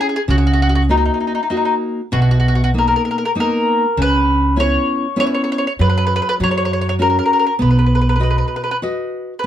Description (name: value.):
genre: italian folk, Italian serenade.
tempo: 98 BPM.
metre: 3/4.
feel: swing 53% on 8ths.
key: B major.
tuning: A4 = 440 Hz.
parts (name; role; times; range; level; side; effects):
mandolin; melody; 0.0-9.5 s; D#4 to C#5; -18 LUFS; left 1 dB; plate reverb.
nylon-string guitar; accompaniment; 0.0-9.5 s; B2 to D#5; -19 LUFS; left 1 dB; none.
upright bass; bass; 0.3-8.4 s; B1 to F#2; -16 LUFS; right 1 dB; none.
room: moderate small room reverb, RT60 0.5 s.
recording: none.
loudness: -14 LUFS.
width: side -11 dB against mid.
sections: 0.0-9.5 A section.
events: none.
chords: 0.3 F#6/C#; 2.1 Bmaj7; 4.0 C#m7; 5.8 F#sus4; 6.4 F#; 7.6 B.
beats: | 0.28 0.90 1.51 | 2.13 2.75 3.36 | 3.97 4.57 5.18 | 5.79 6.39 7.00 | 7.60 8.21 8.83 | 9.46.